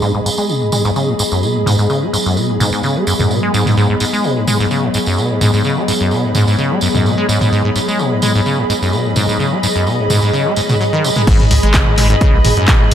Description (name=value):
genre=acid house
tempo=128 BPM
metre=4/4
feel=swing 53% on 16ths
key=G# minor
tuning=A4 = 440 Hz
part: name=warbly tape-like pad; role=sustained chords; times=0.0-12.9 s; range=F#3 to C#5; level=-21 LUFS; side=left 2 dB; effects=chorus, built-in reverb, sidechain pumping
part: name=acid bass, saw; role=riff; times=0.0-12.9 s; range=F#2 to G#3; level=-16 LUFS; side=equal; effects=tube saturation, lush chorus, sidechain pumping, tape echo
part: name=tambourine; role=percussion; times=0.0-11.2 s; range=none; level=-22 LUFS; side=right 3 dB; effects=none
part: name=granular cloud pad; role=texture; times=0.0-12.9 s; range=G#4 to B5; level=-20 LUFS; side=equal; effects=built-in reverb, sidechain pumping
part: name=punchy analog drum machine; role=drums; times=0.7-12.9 s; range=crash cymbal, handclaps, hi-hat, toms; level=-18 LUFS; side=equal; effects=none
part: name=warm sub bass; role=bass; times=11.3-12.9 s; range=G#1 to C#2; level=-15 LUFS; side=equal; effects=sidechain pumping
part: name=electronic kick drum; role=drums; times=11.3-12.8 s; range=none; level=-12 LUFS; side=equal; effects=none
room=moderate lush hall reverb, RT60 1.7 s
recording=none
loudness=-12 LUFS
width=side -9 dB against mid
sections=0.0-11.3 A section; 11.3-12.9 B section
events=filter sweep on acid bass 0.0-11.3; drop 11.3-12.9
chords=0.0 G#m7